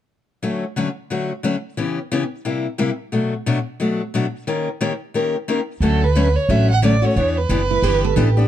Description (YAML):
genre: acoustic string swing (jazz manouche)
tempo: 178 BPM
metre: 4/4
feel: swing 60% on 8ths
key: D major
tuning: A4 = 442 Hz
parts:
  - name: picked steel-string acoustic guitar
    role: accompaniment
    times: 0.4-8.5 s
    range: B2 to Bb4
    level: -20 LUFS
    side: left 3 dB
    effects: none
  - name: warm violin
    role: melody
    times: 5.8-8.4 s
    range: A4 to F#5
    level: -20 LUFS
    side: right 4 dB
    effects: plate reverb
  - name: upright bass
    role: bass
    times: 5.8-8.5 s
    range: F#1 to E2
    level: -17 LUFS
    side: right 1 dB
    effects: none
  - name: picked steel-string acoustic guitar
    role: second line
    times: 7.7-8.4 s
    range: E4 to A4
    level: -22 LUFS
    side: right 14 dB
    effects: none
room: light reverb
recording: dark, warm production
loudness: -18 LUFS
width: side -11 dB against mid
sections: 0.4-5.8 A section; 5.8-8.5 B section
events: none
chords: 0.4 Dmaj7; 1.8 C#m7b5; 2.5 C7; 3.1 Bm7; 4.5 Eb7; 5.8 Dmaj7; 7.2 Em7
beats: | 0.43 0.77 1.11 1.44 | 1.78 2.12 2.45 2.79 | 3.13 3.46 3.80 4.14 | 4.47 4.81 5.15 5.48 | 5.82 6.16 6.49 6.83 | 7.17 7.50 7.84 8.18